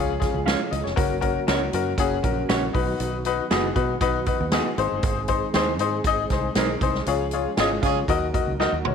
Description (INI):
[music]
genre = uptempo 1960s-style soul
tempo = 118 BPM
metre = 4/4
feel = straight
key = unclear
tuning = A4 = 442 Hz
[part]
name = clear upright piano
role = accompaniment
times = 0.0-8.9 s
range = Db4 to F5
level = -24 LUFS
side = left 9 dB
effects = none
[part]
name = mellow tonewheel organ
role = sustained chords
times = 0.0-8.9 s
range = Db3 to Ab4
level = -32 LUFS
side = right 2 dB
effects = chorus vibrato, slow rotary speaker
[part]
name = fingered electric bass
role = bass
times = 0.0-8.9 s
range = F1 to Db3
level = -29 LUFS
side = right 2 dB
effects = none
[part]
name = swinging big-band drum kit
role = drums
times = 0.2-8.9 s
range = hi-hat, kick drum, snare drum, toms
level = -26 LUFS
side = right 2 dB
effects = none
[part]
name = electric guitar through a small old amp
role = stabs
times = 0.5-8.7 s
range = B3 to Eb5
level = -29 LUFS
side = right 14 dB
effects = none
[part]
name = warm horn section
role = second line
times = 7.6-8.0 s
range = Db4 to Ab4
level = -31 LUFS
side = right 14 dB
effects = none
[sound]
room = light reverb, small room ambience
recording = 1960s-style stereo with parts hard left and right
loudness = -21 LUFS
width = side -7 dB against mid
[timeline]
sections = 0.0-8.9 A section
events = band accent 7.1-8.9; drum fill 8.6-8.9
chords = 0.0 Db; 1.0 Gb; 2.8 B; 4.8 Ab; 7.1 Db; 8.1 Ebm